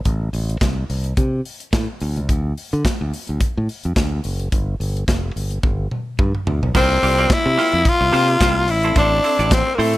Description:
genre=disco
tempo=108 BPM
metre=4/4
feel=swing 56% on 16ths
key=unclear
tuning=A4 = 440 Hz
part: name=modern bright fingered electric bass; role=bass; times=0.1-10.0 s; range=F1 to D3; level=-21 LUFS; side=equal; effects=none
part: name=modern studio drum kit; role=drums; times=0.1-10.0 s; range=crash cymbal, handclaps, hi-hat, kick drum, snare drum, toms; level=-21 LUFS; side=equal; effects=none
part: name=semi-hollow electric guitar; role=accompaniment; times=6.7-10.0 s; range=Bb3 to D5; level=-23 LUFS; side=right 5 dB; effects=harmonic tremolo
part: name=raspy tenor saxophone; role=melody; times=6.8-10.0 s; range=A3 to F4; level=-16 LUFS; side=left 2 dB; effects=none
room=small room ambience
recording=none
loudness=-16 LUFS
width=side -16 dB against mid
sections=0.0-6.7 A section; 6.7-10.0 B section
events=drum fill 5.6-6.7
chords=0.0 Am; 2.0 N.C.; 4.5 G5; 6.7 C7sus4; 8.7 Am

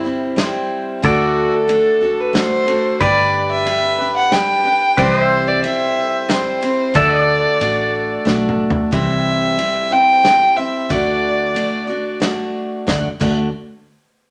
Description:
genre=honky-tonk and classic country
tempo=91 BPM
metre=3/4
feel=straight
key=D mixolydian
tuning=A4 = 442 Hz
part: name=dark fiddle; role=melody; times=0.0-12.2 s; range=E4 to G5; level=-19 LUFS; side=equal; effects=none
part: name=picked steel-string acoustic guitar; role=accompaniment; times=0.0-13.5 s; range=C3 to D5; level=-23 LUFS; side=equal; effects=none
part: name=vintage muted fingered electric bass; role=bass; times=0.0-13.5 s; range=G1 to D2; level=-28 LUFS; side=equal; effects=none
part: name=natural country drum kit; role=drums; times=0.4-13.4 s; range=crash cymbal, kick drum, ride cymbal, snare drum, toms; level=-25 LUFS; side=equal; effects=none
part: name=pedal steel guitar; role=sustained chords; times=1.0-8.9 s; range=A4 to E5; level=-22 LUFS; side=equal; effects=none
room=moderate studio reverb, RT60 0.8 s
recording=none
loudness=-16 LUFS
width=mono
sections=0.0-8.9 A section; 8.9-12.9 B section; 12.9-14.3 C section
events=drum fill 8.3-8.9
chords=0.0 C; 1.0 D; 3.0 G; 5.0 C; 7.0 D; 8.9 C; 10.9 D

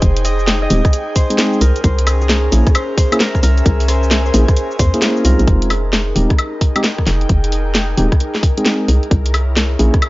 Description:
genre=UK garage, two-step garage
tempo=132 BPM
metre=4/4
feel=swing 64% on 16ths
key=F minor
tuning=A4 = 439 Hz
part: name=concert harp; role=melody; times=0.0-7.4 s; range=Ab4 to Eb5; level=-24 LUFS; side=left 1 dB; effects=tape echo
part: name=ethereal airy pad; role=sustained chords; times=0.0-10.1 s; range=Ab4 to Bb4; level=-29 LUFS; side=right 2 dB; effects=ensemble chorus, built-in reverb, sidechain pumping
part: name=hollow knocking FM bass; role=bass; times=0.0-9.9 s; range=Eb1 to E2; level=-14 LUFS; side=equal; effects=sidechain pumping
part: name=electronic kick drum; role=drums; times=0.0-10.0 s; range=none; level=-14 LUFS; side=equal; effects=none
part: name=garage drum kit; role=drums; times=0.0-10.1 s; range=hi-hat, rim click, shaker, snare drum, woodblock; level=-18 LUFS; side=equal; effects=none
part: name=airy breathy pad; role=texture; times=0.0-10.1 s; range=Db4 to Ab5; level=-25 LUFS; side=equal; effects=chorus, sidechain pumping
part: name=mellow tine electric piano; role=stabs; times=0.7-9.9 s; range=Ab3 to Ab4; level=-19 LUFS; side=equal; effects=none
room=little or no reverb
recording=dry, gritty hardware recording, nothing above 7.5 kHz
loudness=-12 LUFS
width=side -19 dB against mid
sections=0.0-5.5 A section; 5.5-10.1 B section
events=drop 0.0-5.5; kick drops out 5.0-5.5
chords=0.0 Fm9; 1.6 C7b9b13; 5.5 Fm9; 8.9 C7b9b13

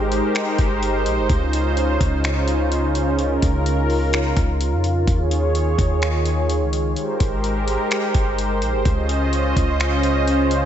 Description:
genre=hip hop, atmospheric cloud-rap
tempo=127 BPM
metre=4/4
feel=half-time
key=Db lydian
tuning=A4 = 440 Hz
part: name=warm analog pad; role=sustained chords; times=0.0-10.7 s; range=Db3 to Eb5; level=-20 LUFS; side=right 1 dB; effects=chorus
part: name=warm 808-style bass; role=bass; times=0.0-10.7 s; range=G1 to F2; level=-21 LUFS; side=equal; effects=none
part: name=dusty soul sampler-style drum kit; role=drums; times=0.1-10.6 s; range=finger snaps, hi-hat, kick drum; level=-24 LUFS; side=equal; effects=none
room=moderate lush hall reverb, RT60 1.8 s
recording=dreamy mix soaked in reverb, nothing above 8.0 kHz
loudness=-17 LUFS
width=side -10 dB against mid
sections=0.0-10.7 A section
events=none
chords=0.0 Abmaj7; 1.3 Dbmaj7; 5.1 Eb9sus4; 7.0 Abmaj7; 8.9 Dbmaj7

